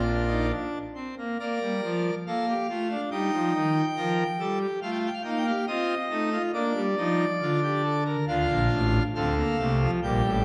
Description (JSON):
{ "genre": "classical, baroque-style 4-part fugue for pipe organ", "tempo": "69 BPM", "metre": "4/4", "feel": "straight", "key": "Bb major", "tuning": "A4 = 439 Hz", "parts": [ { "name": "pipe organ, full organ", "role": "solo", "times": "0.0-10.4 s", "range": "A1 to G5", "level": "-27 LUFS", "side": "equal", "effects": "none" } ], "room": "wet recital hall reverb, RT60 1.6 s", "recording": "dark, warm production", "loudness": "-27 LUFS", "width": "mono", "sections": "0.0-1.4 A section; 1.4-8.3 B section; 8.3-10.4 C section", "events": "none", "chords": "0.0 Bb; 3.1 Eb; 4.8 F7/A; 6.5 Bb; 8.3 Dm" }